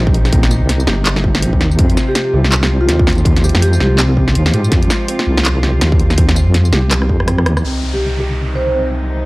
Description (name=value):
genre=half-time drum and bass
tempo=164 BPM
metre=4/4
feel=swing 59% on 16ths, half-time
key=C minor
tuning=A4 = 440 Hz
part: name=warm chamber cello section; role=sustained chords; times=0.0-9.3 s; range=C3 to F4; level=-24 LUFS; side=equal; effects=sidechain pumping
part: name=felt-muted upright piano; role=arpeggios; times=0.0-9.3 s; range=C4 to G4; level=-25 LUFS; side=right 1 dB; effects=low-pass filter, analog delay
part: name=deep soft wobble bass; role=bass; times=0.0-9.3 s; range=G1 to Ab2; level=-14 LUFS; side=equal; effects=chorus
part: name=drum and bass drum kit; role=drums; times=0.1-7.6 s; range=handclaps, hi-hat, rim click, snare drum, tambourine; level=-18 LUFS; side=equal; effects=none
part: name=electronic kick drum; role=drums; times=0.1-7.2 s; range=none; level=-14 LUFS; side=equal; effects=distortion
part: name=vibraphone with medium mallets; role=melody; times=2.1-4.0, 7.9-8.8 s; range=F4 to C5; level=-21 LUFS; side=equal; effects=analog delay
part: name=downlifter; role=sound effects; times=7.6-9.3 s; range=none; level=-27 LUFS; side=equal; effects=none
room=studio ambience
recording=dry, gritty hardware recording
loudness=-11 LUFS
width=side -22 dB against mid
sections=0.0-7.6 A section; 7.6-9.3 B section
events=drop 0.0-7.6; drum fill 6.9-7.6; kick drops out 7.3-7.6; band accent 7.6; filter sweep on felt piano 7.6-9.3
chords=0.0 Cm; 1.8 Fm; 7.6 Cm